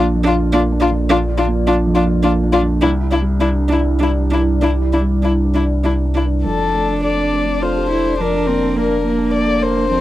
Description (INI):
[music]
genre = neoclassical piano and strings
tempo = 96-107 BPM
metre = 3/4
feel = rubato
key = unclear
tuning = A4 = 441 Hz
[part]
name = dark violin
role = melody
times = 0.0-10.0 s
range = E4 to D5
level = -19 LUFS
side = left 5 dB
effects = none
[part]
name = felt-muted upright piano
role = accompaniment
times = 0.0-10.0 s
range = Bb1 to Bb4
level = -20 LUFS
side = right 2 dB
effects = none
[part]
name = rich viola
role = accompaniment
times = 0.0-10.0 s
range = Bb3 to F4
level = -21 LUFS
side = right 3 dB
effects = none
[part]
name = dark analog pad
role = sustained chords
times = 0.1-10.0 s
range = G3 to A5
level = -26 LUFS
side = equal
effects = chorus, phaser
[part]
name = warm sub bass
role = bass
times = 0.0-10.0 s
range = F1 to C2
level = -19 LUFS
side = equal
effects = none
[sound]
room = little or no reverb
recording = dry, close 1970s-style studio recording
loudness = -14 LUFS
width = side -14 dB against mid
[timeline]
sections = 0.0-6.4 A section; 6.4-10.0 B section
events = none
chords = 0.0 Bb; 2.8 Cadd9; 6.4 Dm7/F; 8.2 Bbmaj7/F